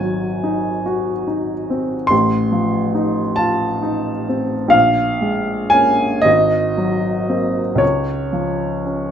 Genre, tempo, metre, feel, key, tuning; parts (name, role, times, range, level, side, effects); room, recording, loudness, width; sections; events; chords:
classical, romantic nocturne for solo piano; 37-48 BPM (dotted quarters); 6/8; rubato; A4 = 439 Hz
warm upright piano; solo; 0.0-9.1 s; Ab1 to C6; -15 LUFS; equal
moderate recital hall reverb, RT60 1.4 s; close, detailed microphones; -15 LUFS; side -8 dB against mid
0.0-9.1 A section
0.0 Ab7; 2.1 F7/A; 4.7 Bbm7; 6.3 Ab9; 7.8 Db